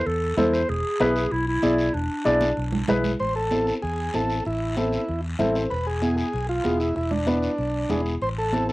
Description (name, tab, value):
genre	latin, cumbia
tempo	191 BPM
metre	4/4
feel	straight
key	A harmonic minor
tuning	A4 = 440 Hz
part	warm clarinet	second line	0.0-3.0 s	D4 to C5	-26 LUFS	right 1 dB	cassette tape
part	fingered electric bass	bass	0.1-8.7 s	E1 to E2	-28 LUFS	equal	none
part	congas	percussion	0.1-8.7 s	none	-29 LUFS	right 2 dB	none
part	guiro	percussion	0.1-8.7 s	none	-39 LUFS	left 2 dB	none
part	dark upright piano	accompaniment	0.4-8.7 s	B3 to E5	-24 LUFS	left 1 dB	cassette tape
part	overdriven combo organ	melody	3.2-8.7 s	D4 to C5	-26 LUFS	equal	cassette tape
room	moderate studio ambience, RT60 0.5 s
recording	home recording on cassette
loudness	-21 LUFS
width	side -19 dB against mid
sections	0.0-3.2 A section; 3.2-8.7 B section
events	drum fill 2.4-3.2; upright piano fill 5.2-5.7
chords	0.0 Am; 0.7 E7; 3.2 Am; 5.7 E7; 8.2 Am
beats	0.07 0.38 | 0.69 1.01 1.32 1.63 | 1.95 2.26 2.57 2.89 | 3.20 3.51 3.83 4.14 | 4.46 4.77 5.08 5.40 | 5.71 6.02 6.34 6.65 | 6.96 7.28 7.59 7.91 | 8.22 8.53